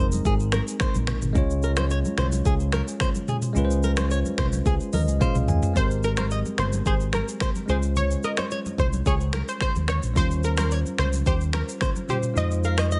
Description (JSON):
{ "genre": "afrobeats", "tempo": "109 BPM", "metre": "4/4", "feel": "straight", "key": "Ab major", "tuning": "A4 = 437 Hz", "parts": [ { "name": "bell-like tine electric piano", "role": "accompaniment", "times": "0.0-13.0 s", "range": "G3 to Ab5", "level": "-32 LUFS", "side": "equal", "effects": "none" }, { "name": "flamenco guitar", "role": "riff", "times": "0.0-13.0 s", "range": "G4 to Eb5", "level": "-34 LUFS", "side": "equal", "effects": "tape echo" }, { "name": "fingered electric bass", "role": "bass", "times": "0.0-13.0 s", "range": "F1 to F2", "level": "-27 LUFS", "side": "equal", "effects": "none" }, { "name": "afro-pop drum kit", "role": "drums", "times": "0.1-13.0 s", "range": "finger snaps, hi-hat, kick drum, rim click, shaker, toms", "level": "-29 LUFS", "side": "equal", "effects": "none" }, { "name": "congas", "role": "percussion", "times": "0.1-12.9 s", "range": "none", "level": "-38 LUFS", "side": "equal", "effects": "none" }, { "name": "analog pluck", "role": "melody", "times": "5.8-12.9 s", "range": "Bb4 to F5", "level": "-33 LUFS", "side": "equal", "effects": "chorus, tape echo" } ], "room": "little or no reverb", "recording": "nothing above 10.8 kHz", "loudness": "-24 LUFS", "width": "mono", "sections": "0.0-5.8 A section; 5.8-13.0 B section", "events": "drum fill 4.7-5.8; tine electric piano fill 4.7-5.8", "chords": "0.0 Abadd9; 1.4 Db; 5.8 Abmaj9; 7.7 Dbmaj7; 10.2 Eb13; 12.4 Fm7" }